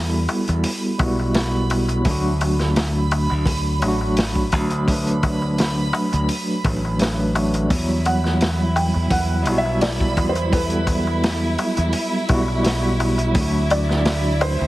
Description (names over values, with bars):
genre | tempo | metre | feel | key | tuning
trip hop | 85 BPM | 4/4 | straight | E minor | A4 = 441 Hz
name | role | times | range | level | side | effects
tine electric piano | accompaniment | 0.0-14.7 s | F#3 to B4 | -23 LUFS | right 1 dB | medium tremolo, tape echo
modern bright fingered electric bass | bass | 0.0-14.7 s | A1 to E2 | -22 LUFS | equal | tube saturation
backwards swelling texture | texture | 0.0-14.7 s | B5 | -32 LUFS | right 3 dB | built-in reverb
crunchy breakbeat drum kit | drums | 0.3-14.6 s | hi-hat, kick drum, snare drum | -24 LUFS | equal | none
darbuka | percussion | 0.3-14.7 s | none | -29 LUFS | left 3 dB | none
rich chamber violin section | sustained chords | 7.7-14.7 s | E4 | -28 LUFS | right 1 dB | none
felt-muted upright piano | melody | 8.1-14.7 s | B4 to G5 | -24 LUFS | right 1 dB | tape echo
room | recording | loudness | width
light reverb, small room ambience | heavily compressed radio sound, multiband compression, vinyl crackle | -18 LUFS | side -17 dB against mid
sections
0.0-14.7 A section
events
none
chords
0.0 Emadd9; 2.1 D; 7.7 Emadd9; 13.3 D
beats
0.64 1.35 | 2.06 2.76 3.47 4.17 | 4.88 5.58 6.29 7.00 | 7.70 8.41 9.11 9.82 | 10.53 11.23 11.94 12.64 | 13.35 14.06